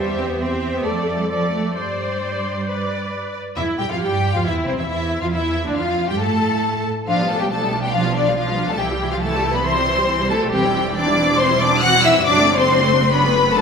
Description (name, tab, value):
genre	quick classical-period movement for string orchestra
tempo	138 BPM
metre	4/4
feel	straight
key	C major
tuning	A4 = 440 Hz
part	rich symphonic violin section	melody	0.0-13.6 s	C5 to F#6	-22 LUFS	left 4 dB	none
part	rich chamber violin section	second line	0.0-13.6 s	C4 to F#5	-22 LUFS	left 3 dB	none
part	rich symphonic viola section	accompaniment	0.0-13.6 s	E3 to C5	-24 LUFS	right 1 dB	none
part	clear studio cello section	bass	0.0-13.6 s	C3 to F#4	-25 LUFS	right 3 dB	none
part	warm chamber double bass section	bass	0.0-13.6 s	E1 to A2	-25 LUFS	right 4 dB	none
room	wet concert hall reverb, RT60 2.2 s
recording	minimal, uncompressed stereo recording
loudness	-16 LUFS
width	side -6 dB against mid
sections	0.0-3.6 A section; 3.6-13.6 B section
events	none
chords	0.0 C/E; 0.9 Dm/F; 1.8 Gsus4; 2.7 G; 3.6 C/E; 5.3 Dm; 7.1 G7/B; 8.8 C; 10.5 C/E; 12.3 D7/F#